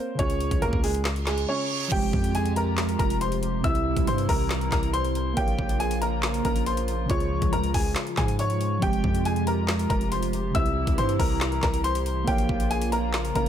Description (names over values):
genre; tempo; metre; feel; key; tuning
hip hop, trap; 139 BPM; 4/4; half-time; F harmonic minor; A4 = 440 Hz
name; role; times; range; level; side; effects
clear concert grand piano; melody; 0.0-13.5 s; Ab3 to E6; -28 LUFS; left 1 dB; low-pass filter
muted felt-like synth keys; accompaniment; 0.0-13.5 s; C3 to F5; -30 LUFS; right 4 dB; chorus, low-pass filter
hard-hitting 808-style bass; bass; 0.2-13.5 s; F1 to Ab2; -28 LUFS; equal; none
trap drum kit; drums; 0.2-13.5 s; crash cymbal, handclaps, hi-hat, kick drum, snare drum; -28 LUFS; equal; none
reverse cymbal and impact; sound effects; 1.2-3.6 s; none; -35 LUFS; right 4 dB; none
hollow soft pad; sustained chords; 1.9-13.5 s; C3 to G4; -32 LUFS; equal; ensemble chorus
room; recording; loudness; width
little or no reverb; none; -22 LUFS; side -9 dB against mid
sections
0.0-1.9 A section; 1.9-13.5 B section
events
reverse cymbal 1.2-1.9; impact 1.9-3.6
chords
0.2 Db; 1.9 Fmadd9; 3.6 C; 5.4 Bbm; 7.1 Db; 8.8 Fmadd9; 10.5 C; 12.3 Bbm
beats
| 0.19 0.62 1.05 1.48 | 1.92 2.35 2.78 3.21 | 3.64 4.07 4.51 4.94 | 5.37 5.80 6.23 6.66 | 7.10 7.53 7.96 8.39 | 8.82 9.25 9.69 10.12 | 10.55 10.98 11.41 11.84 | 12.28 12.71 13.14